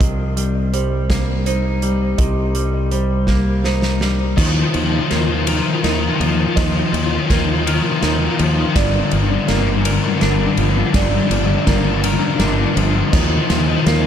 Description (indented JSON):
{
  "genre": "post-rock",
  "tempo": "55 BPM (dotted quarters)",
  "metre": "6/8",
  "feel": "straight",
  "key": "unclear",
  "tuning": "A4 = 440 Hz",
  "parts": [
    { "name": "felt-muted upright piano", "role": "arpeggios", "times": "0.0-14.1 s", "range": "Bb4 to Eb5", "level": "-27 LUFS", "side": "right 6 dB", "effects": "wide subtle chorus, ping-pong delay" },
    { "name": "semi-hollow electric guitar", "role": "arpeggios", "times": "0.0-14.1 s", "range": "G2 to Bb4", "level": "-23 LUFS", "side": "left 1 dB", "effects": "lush chorus, ping-pong delay" },
    { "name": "modern bright fingered electric bass", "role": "bass", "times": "0.0-14.1 s", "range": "G1 to Eb2", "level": "-20 LUFS", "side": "equal", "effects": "none" },
    { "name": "loose indie drum kit", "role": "drums", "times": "0.0-14.0 s", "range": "crash cymbal, hi-hat, kick drum, ride cymbal, snare drum", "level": "-22 LUFS", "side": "equal", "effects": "none" },
    { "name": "overdriven semi-hollow guitar", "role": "riff", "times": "4.4-14.1 s", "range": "G2 to F3", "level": "-18 LUFS", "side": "left 4 dB", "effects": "ensemble chorus" }
  ],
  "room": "moderate huge ambient reverb, RT60 5.3 s",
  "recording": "dreamy mix soaked in reverb",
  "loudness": "-15 LUFS",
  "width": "side -9 dB against mid",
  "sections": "0.0-4.4 A section; 4.4-14.1 B section",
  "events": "drum fill 3.3-4.4, 4.4-14.1; build-up 4.4-14.1",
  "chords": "0.0 Cm7; 4.4 Ebsus2; 8.8 Gm7; 13.1 Ebsus2",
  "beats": "| 0.01 1.10 | 2.19 3.29 | 4.38 5.48 | 6.57 7.67 | 8.76 9.85 | 10.95 12.04 | 13.14"
}